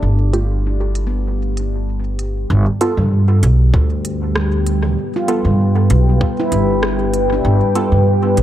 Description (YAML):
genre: ambient dub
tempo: 97 BPM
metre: 4/4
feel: straight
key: G mixolydian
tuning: A4 = 440 Hz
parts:
  - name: deep dark ambient pad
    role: sustained chords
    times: 0.0-8.4 s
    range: G3 to G5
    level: -20 LUFS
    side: equal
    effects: chorus, built-in reverb
  - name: handpan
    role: arpeggios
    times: 0.0-8.4 s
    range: B3 to F4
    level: -26 LUFS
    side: left 1 dB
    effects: analog delay
  - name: upright bass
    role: bass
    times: 0.0-8.4 s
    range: G1 to G2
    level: -15 LUFS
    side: equal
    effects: none
  - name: filtered dub chord stab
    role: stabs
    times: 0.3-7.9 s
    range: A3 to A4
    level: -23 LUFS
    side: right 2 dB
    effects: phaser, dub echo
  - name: organic electronic drum kit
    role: drums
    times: 0.3-8.4 s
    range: hi-hat, rim click, toms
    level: -25 LUFS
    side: right 1 dB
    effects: low-pass filter on hats, low-pass filter on toms, low-pass filter on snare, low-pass filter on room, dub echo
  - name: electronic kick drum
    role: drums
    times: 3.7-6.3 s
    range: none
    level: -18 LUFS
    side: equal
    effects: none
room: light reverb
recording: none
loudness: -14 LUFS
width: side -12 dB against mid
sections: 0.0-2.5 A section; 2.5-8.4 B section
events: filter sweep on synth stab 0.0-2.5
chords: 0.0 G; 2.5 G7